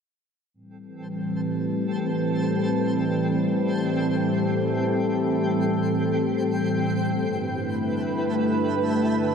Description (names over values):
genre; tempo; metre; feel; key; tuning
hip hop; free time; none; none; A minor; A4 = 440 Hz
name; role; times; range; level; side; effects
warbly tape-like pad; sustained chords; 0.5-9.3 s; G2 to B4; -22 LUFS; equal; chorus, built-in reverb, low-pass filter
twinkling granular texture; texture; 1.0-9.3 s; C4 to G5; -32 LUFS; right 1 dB; built-in reverb
room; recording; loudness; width
moderate huge ambient reverb, RT60 5.0 s; dark, warm production; -22 LUFS; side -6 dB against mid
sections
0.5-9.3 A section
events
filter sweep on ambient pad 0.5-9.3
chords
0.5 Am7; 7.2 G69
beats
free time